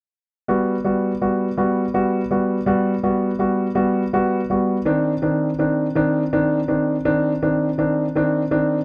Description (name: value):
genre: pop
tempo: 55 BPM (dotted quarters)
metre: 6/8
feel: straight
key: G major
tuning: A4 = 441 Hz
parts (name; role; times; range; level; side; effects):
- warm concert grand piano; accompaniment; 0.5-8.8 s; Eb3 to F#4; -20 LUFS; equal; none
room: small room ambience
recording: dry, close 1970s-style studio recording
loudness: -20 LUFS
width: mono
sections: 0.5-8.8 A section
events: none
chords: 0.5 Gmaj7; 4.9 Cmadd9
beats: | 0.48 1.58 | 2.67 3.77 | 4.87 5.96 | 7.06 8.15